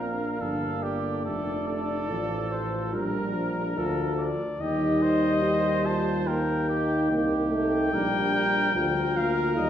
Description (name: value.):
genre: classical, brass quintet.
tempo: 72 BPM.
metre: 4/4.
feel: straight.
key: Bb major.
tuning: A4 = 440 Hz.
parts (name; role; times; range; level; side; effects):
warm trumpet; melody; 0.0-9.7 s; Bb4 to A5; -30 LUFS; left 4 dB; none.
bright trumpet; second line; 0.0-9.7 s; G4 to C5; -33 LUFS; right 4 dB; none.
mellow French horn; accompaniment; 0.0-9.7 s; D4 to G4; -29 LUFS; left 1 dB; none.
warm trombone; accompaniment; 0.0-9.7 s; F3 to Bb3; -32 LUFS; right 3 dB; none.
bright bass trombone; bass; 0.0-9.7 s; F1 to Eb2; -31 LUFS; right 1 dB; none.
room: wet recital hall reverb, RT60 1.6 s.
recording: heard from further back in the room, faint mains hum.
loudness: -24 LUFS.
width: side -10 dB against mid.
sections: 0.0-9.7 A section.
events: none.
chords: 0.0 Bb; 1.2 F; 2.9 Bb; 4.6 Eb; 7.9 Bb.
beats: 0.41 | 1.25 2.09 2.93 3.76 | 4.60 5.44 6.27 7.10 | 7.93 8.75 9.57.